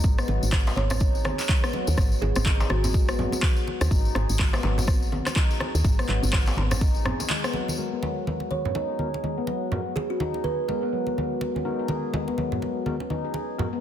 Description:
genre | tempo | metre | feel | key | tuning
afro house | 124 BPM | 4/4 | swing 60% on 16ths | G# minor | A4 = 436 Hz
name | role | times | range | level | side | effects
handpan | arpeggios | 0.0-13.8 s | F#3 to G#4 | -31 LUFS | left 3 dB | sidechain pumping, low-pass filter, dub echo
woody FM bass | bass | 0.0-7.1 s | G#1 to D#2 | -26 LUFS | equal | sidechain pumping
electronic kick drum | drums | 0.0-6.9 s | none | -23 LUFS | equal | small room ambience
tambourine | percussion | 0.0-7.8 s | none | -37 LUFS | left 3 dB | none
electronic rim click and handclaps | drums | 0.2-7.5 s | none | -30 LUFS | left 1 dB | low-pass filter on snare, small room ambience
congas | percussion | 0.3-13.7 s | none | -32 LUFS | right 2 dB | none
djembe | percussion | 0.7-7.7 s | none | -33 LUFS | left 2 dB | none
kalimba | melody | 0.8-3.2, 8.5-10.8 s | F#4 to C#5 | -32 LUFS | right 5 dB | dub echo
tine electric piano | stabs | 7.8-13.7 s | G#3 to A#4 | -34 LUFS | left 6 dB | overdrive, sidechain pumping, low-pass filter, dub echo
room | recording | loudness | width
little or no reverb | dense, heavily limited modern master | -22 LUFS | side -10 dB against mid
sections
0.0-7.8 A section; 7.8-13.8 B section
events
filter sweep on handpan 7.8-13.8; filter sweep on tine electric piano 7.8-13.8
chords
0.0 N.C.; 7.8 G#m9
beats
| 0.04 0.52 1.01 1.49 | 1.98 2.46 2.94 3.43 | 3.91 4.39 4.88 5.36 | 5.85 6.33 6.81 7.30 | 7.78 8.27 8.75 9.23 | 9.72 10.20 10.69 11.17 | 11.65 12.14 12.62 13.11 | 13.59

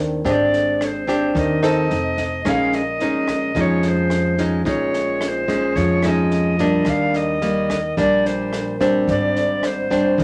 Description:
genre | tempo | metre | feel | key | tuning
bossa nova | 109 BPM | 4/4 | straight | unclear | A4 = 440 Hz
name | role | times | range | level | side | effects
nylon-string guitar | accompaniment | 0.0-10.2 s | Ab2 to A4 | -21 LUFS | equal | none
upright bass | bass | 0.0-10.2 s | F1 to F2 | -32 LUFS | equal | none
compact cocktail drum kit | drums | 0.2-10.2 s | kick drum, rim click, snare drum | -32 LUFS | equal | none
alto recorder | melody | 0.3-10.2 s | C5 to F5 | -25 LUFS | equal | none
room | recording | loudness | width
wet studio reverb, RT60 0.6 s | none | -19 LUFS | mono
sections
0.0-10.2 A section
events
none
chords
0.0 Abmaj7#11; 1.9 F7; 2.4 Bbm11; 6.9 Ebmaj7; 9.1 Abmaj7#11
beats
| 0.24 0.80 1.35 1.90 | 2.45 3.00 3.55 4.10 | 4.66 5.21 5.76 6.31 | 6.86 7.42 7.97 8.52 | 9.07 9.62 10.18

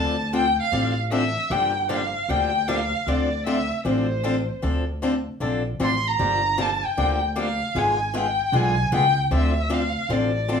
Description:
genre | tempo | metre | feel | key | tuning
acoustic string swing (jazz manouche) | 154 BPM | 4/4 | swing 61% on 8ths | D minor | A4 = 440 Hz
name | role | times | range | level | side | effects
warm violin | melody | 0.0-10.6 s | C5 to C6 | -24 LUFS | left 1 dB | none
picked swing-style acoustic guitar | accompaniment | 0.0-10.6 s | D3 to A4 | -25 LUFS | left 3 dB | none
upright bass | bass | 0.0-10.6 s | G1 to D2 | -26 LUFS | equal | none
room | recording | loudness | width
moderate small room reverb, RT60 0.5 s | small room ambience | -20 LUFS | side -6 dB against mid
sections
0.0-10.6 A section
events
none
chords
0.0 Dm9; 1.5 Gm7; 3.1 Dm7; 6.2 Gm7; 7.8 G#dim7; 9.3 Dm9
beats
0.33 0.72 1.11 | 1.50 1.90 2.29 2.68 | 3.07 3.46 3.85 4.24 | 4.63 5.02 5.41 5.80 | 6.19 6.58 6.97 7.37 | 7.75 8.15 8.54 8.93 | 9.32 9.71 10.10 10.49

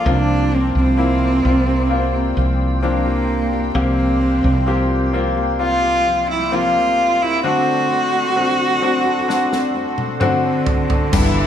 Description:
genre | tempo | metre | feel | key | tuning
pop ballad | 65 BPM | 4/4 | straight | unclear | A4 = 440 Hz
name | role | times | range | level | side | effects
warm cello | melody | 0.0-11.5 s | D3 to F#4 | -19 LUFS | right 2 dB | none
clear concert grand piano | accompaniment | 0.0-11.5 s | G2 to G5 | -21 LUFS | left 3 dB | none
glassy FM pad | sustained chords | 0.0-11.5 s | Bb3 to D6 | -26 LUFS | equal | ensemble chorus, built-in reverb
fingerpicked steel-string acoustic guitar | arpeggios | 0.0-11.5 s | G2 to A4 | -27 LUFS | left 5 dB | none
woody fretless electric bass | bass | 0.1-11.5 s | G1 to C2 | -20 LUFS | equal | none
natural country drum kit | drums | 9.3-11.3 s | crash cymbal, kick drum, snare drum, toms | -20 LUFS | equal | none
warm studio violin section | second line | 11.1-11.5 s | E4 | -24 LUFS | left 2 dB | none
tambourine | percussion | 11.1-11.4 s | none | -34 LUFS | right 6 dB | none
room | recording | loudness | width
studio reverb | studio ambience | -15 LUFS | side -9 dB against mid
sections
0.0-11.1 A section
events
drum fill 9.3-11.1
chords
0.1 C7sus4; 7.4 D7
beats
| 0.06 0.98 1.91 2.83 | 3.75 4.67 5.60 6.52 | 7.44 8.37 9.29 10.21 | 11.13

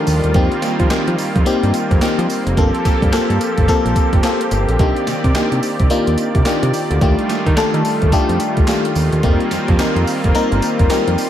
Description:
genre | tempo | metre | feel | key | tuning
R&B, new jack swing | 108 BPM | 4/4 | swing 61% on 16ths | unclear | A4 = 440 Hz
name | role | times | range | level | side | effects
FM electric piano | accompaniment | 0.0-11.3 s | A3 to Bb4 | -19 LUFS | left 3 dB | chorus
brassy analog pad | sustained chords | 0.0-11.3 s | Eb3 to D5 | -21 LUFS | right 2 dB | chorus
fat analog bass | bass | 0.1-11.2 s | F1 to F3 | -18 LUFS | right 1 dB | none
gated 80s digital drum machine | drums | 0.1-11.3 s | handclaps, hi-hat, kick drum, snare drum, tambourine | -18 LUFS | right 1 dB | gated reverb, gated reverb snare
room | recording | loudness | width
light reverb | none | -13 LUFS | side -11 dB against mid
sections
0.0-11.3 A section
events
none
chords
0.3 F9sus4; 2.6 Gm11; 4.8 Cm9; 7.0 Ebmaj9#11; 9.2 F9sus4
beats
| 0.35 0.90 1.46 2.01 | 2.57 3.12 3.68 4.24 | 4.79 5.35 5.90 6.46 | 7.01 7.57 8.12 8.68 | 9.23 9.79 10.35 10.90

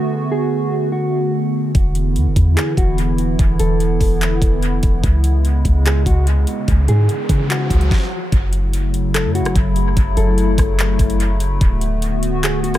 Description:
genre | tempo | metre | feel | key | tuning
hip hop, atmospheric cloud-rap | 146 BPM | 4/4 | half-time | F# minor | A4 = 440 Hz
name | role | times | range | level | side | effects
hollow soft pad | sustained chords | 0.0-12.8 s | C#3 to F#4 | -21 LUFS | equal | chorus, sidechain pumping
mellow electric guitar | melody | 0.3-12.8 s | F#4 to A4 | -25 LUFS | equal | dub echo
soft 808-style bass | bass | 1.7-12.8 s | D1 to C#3 | -17 LUFS | equal | none
smooth R&B drum kit | drums | 1.7-12.8 s | handclaps, hi-hat, kick drum, rim click, snare drum | -18 LUFS | equal | dub echo
riser | sound effects | 6.1-7.9 s | none | -29 LUFS | equal | none
room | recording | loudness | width
little or no reverb | echo-heavy mix | -14 LUFS | side -13 dB against mid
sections
0.0-8.3 A section; 8.3-12.8 B section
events
riser 6.1-8.3; stop 7.9-8.3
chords
0.0 D6; 1.7 E5; 5.0 C#m7; 8.3 F#m7; 11.6 D6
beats
| 0.10 0.52 0.93 1.34 | 1.75 2.16 2.57 2.98 | 3.39 3.80 4.21 4.62 | 5.04 5.45 5.86 6.27 | 6.68 7.09 7.50 7.91 | 8.32 8.73 9.14 9.56 | 9.97 10.38 10.79 11.20 | 11.61 12.02 12.43

